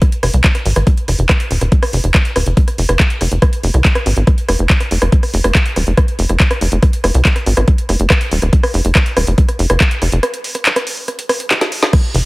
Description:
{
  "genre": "psychedelic trance",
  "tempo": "141 BPM",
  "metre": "4/4",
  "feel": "straight",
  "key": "F minor",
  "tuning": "A4 = 440 Hz",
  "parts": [
    { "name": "electronic kick drum", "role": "drums", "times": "0.0-12.0 s", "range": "none", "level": "-12 LUFS", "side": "equal", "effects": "overdrive" },
    { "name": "garage drum kit", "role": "drums", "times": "0.0-12.2 s", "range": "crash cymbal, handclaps, hi-hat, rim click, snare drum", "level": "-16 LUFS", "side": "equal", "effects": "overdrive" },
    { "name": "tight sequencer bass", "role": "bass", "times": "0.2-12.2 s", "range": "Eb1 to C2", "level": "-14 LUFS", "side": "equal", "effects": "none" }
  ],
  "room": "little or no reverb",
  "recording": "heavily compressed radio sound",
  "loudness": "-11 LUFS",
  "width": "side -23 dB against mid",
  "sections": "0.0-11.9 A section",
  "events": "break 10.2-11.9; drum fill 11.5-11.9",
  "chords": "none"
}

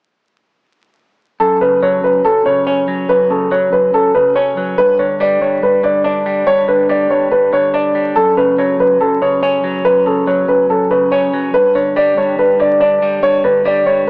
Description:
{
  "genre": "hip hop",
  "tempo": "142 BPM",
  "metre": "4/4",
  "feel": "half-time",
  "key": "F# phrygian",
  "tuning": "A4 = 441 Hz",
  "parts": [
    { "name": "dark grand piano", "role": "melody", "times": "1.4-14.1 s", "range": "A4 to D5", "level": "-11 LUFS", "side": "equal", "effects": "tape echo" },
    { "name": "semi-hollow electric guitar", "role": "accompaniment", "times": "1.4-14.1 s", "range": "F#2 to D4", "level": "-18 LUFS", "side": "equal", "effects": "spring reverb" }
  ],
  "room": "light reverb, studio reverb",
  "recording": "dry, gritty hardware recording, vinyl crackle, tape stop, small speaker sound",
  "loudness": "-11 LUFS",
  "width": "side -36 dB against mid",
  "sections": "1.4-14.1 A section",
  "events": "none",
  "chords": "1.4 F#5; 4.8 G5; 8.2 F#5; 11.5 G5"
}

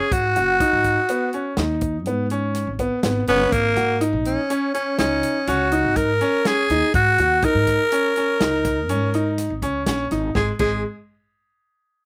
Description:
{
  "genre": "progressive instrumental, band music in an uneven meter",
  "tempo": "123 BPM",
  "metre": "7/4",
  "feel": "straight",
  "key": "unclear",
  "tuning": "A4 = 441 Hz",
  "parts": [
    { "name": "growling tenor saxophone", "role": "melody", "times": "0.0-10.8 s", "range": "A#3 to A#4", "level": "-22 LUFS", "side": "equal", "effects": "slapback echo" },
    { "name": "bright grand piano", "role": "arpeggios", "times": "0.0-10.8 s", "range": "G#3 to F#4", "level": "-26 LUFS", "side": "equal", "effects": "none" },
    { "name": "upright bass", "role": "bass", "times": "0.1-10.8 s", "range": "F#1 to G#2", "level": "-28 LUFS", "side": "equal", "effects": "none" },
    { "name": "natural country drum kit", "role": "drums", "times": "0.1-10.7 s", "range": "crash cymbal, hi-hat, kick drum, snare drum", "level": "-29 LUFS", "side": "equal", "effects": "none" }
  ],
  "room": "little or no reverb",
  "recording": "recorded outdoors, with no room sound",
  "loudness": "-20 LUFS",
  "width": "mono",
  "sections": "0.0-10.4 A section; 10.4-12.1 B section",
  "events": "none",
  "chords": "0.0 G#m7; 3.5 F#/G# (rootless); 10.4 N.C."
}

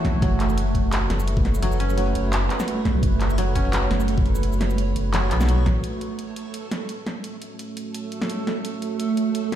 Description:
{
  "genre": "half-time drum and bass",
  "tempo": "171 BPM",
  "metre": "4/4",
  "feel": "swing 54% on 16ths, half-time",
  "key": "F# minor",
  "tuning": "A4 = 440 Hz",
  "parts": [
    { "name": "deep dark ambient pad", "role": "sustained chords", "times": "0.0-9.6 s", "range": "A3 to C#5", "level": "-30 LUFS", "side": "right 2 dB", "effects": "chorus, built-in reverb, sidechain pumping" },
    { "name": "koto", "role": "arpeggios", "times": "0.0-8.0 s", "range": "E3 to F#4", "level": "-30 LUFS", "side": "left 1 dB", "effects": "vintage 12-bit sampler grit, ping-pong delay" },
    { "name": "drum and bass drum kit", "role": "drums", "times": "0.0-9.6 s", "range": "handclaps, hi-hat, shaker, snare drum", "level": "-29 LUFS", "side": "equal", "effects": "none" },
    { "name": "electronic kick drum", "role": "drums", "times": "0.0-5.7 s", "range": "none", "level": "-22 LUFS", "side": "equal", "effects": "none" },
    { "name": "backwards swelling texture", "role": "texture", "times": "0.0-9.6 s", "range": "A3 to C#5", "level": "-29 LUFS", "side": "right 6 dB", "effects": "built-in reverb" },
    { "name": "saturated sub bass", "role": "bass", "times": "0.1-5.8 s", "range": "F#1 to B1", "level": "-22 LUFS", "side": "equal", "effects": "none" }
  ],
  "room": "digital ambience",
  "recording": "played on a big sound system in a bare room, stone room reverb",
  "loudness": "-20 LUFS",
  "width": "side -11 dB against mid",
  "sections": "0.0-5.8 A section; 5.8-9.6 B section",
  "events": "drop 0.0-5.8",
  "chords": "0.0 F#m"
}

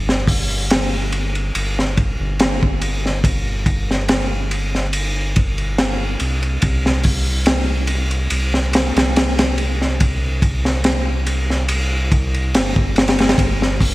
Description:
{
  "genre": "trip hop",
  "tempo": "71 BPM",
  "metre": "4/4",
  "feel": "swing 53% on 16ths",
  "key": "unclear",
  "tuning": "A4 = 440 Hz",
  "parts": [
    { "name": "round analog bass", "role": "bass", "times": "0.0-13.9 s", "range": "G1 to C2", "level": "-20 LUFS", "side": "equal", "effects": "none" },
    { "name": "crunchy breakbeat drum kit", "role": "drums", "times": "0.1-13.9 s", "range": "hi-hat, kick drum, ride cymbal, snare drum", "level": "-17 LUFS", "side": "equal", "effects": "gated reverb" }
  ],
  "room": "light reverb",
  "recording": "bright 1980s-style digital production, vinyl crackle",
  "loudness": "-16 LUFS",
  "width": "side -19 dB against mid",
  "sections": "0.0-13.9 A section",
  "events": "none",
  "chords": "none"
}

